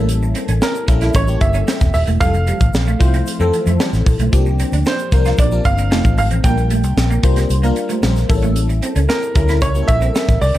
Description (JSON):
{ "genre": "polished 1980s jazz-funk pop", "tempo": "113 BPM", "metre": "4/4", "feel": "straight", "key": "unclear", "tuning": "A4 = 440 Hz", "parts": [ { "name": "FM electric piano", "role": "accompaniment", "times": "0.0-10.6 s", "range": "E3 to C5", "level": "-22 LUFS", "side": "left 4 dB", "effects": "phaser, ensemble chorus" }, { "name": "electric guitar at the edge of break-up", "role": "riff", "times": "0.0-10.6 s", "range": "G3 to F4", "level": "-25 LUFS", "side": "right 5 dB", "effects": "ensemble chorus" }, { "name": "vintage muted fingered electric bass", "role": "bass", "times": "0.0-10.6 s", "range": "Eb1 to F2", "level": "-16 LUFS", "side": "equal", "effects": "none" }, { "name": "tight funk drum kit", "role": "drums", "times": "0.1-10.6 s", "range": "hi-hat, kick drum, snare drum", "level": "-18 LUFS", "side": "equal", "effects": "none" }, { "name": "egg shaker", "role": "percussion", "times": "0.1-10.6 s", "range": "none", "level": "-38 LUFS", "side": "left 8 dB", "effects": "none" }, { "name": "warm baby grand piano", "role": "melody", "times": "0.6-10.6 s", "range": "Bb4 to G5", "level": "-22 LUFS", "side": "right 3 dB", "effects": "none" } ], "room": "studio reverb", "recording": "dark, warm production", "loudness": "-13 LUFS", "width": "side -14 dB against mid", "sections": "0.0-10.6 A section", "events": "none", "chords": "0.0 A7b9; 2.2 Fmaj7; 4.3 C9sus4; 5.9 F7; 6.4 Bb6; 8.3 A7b9" }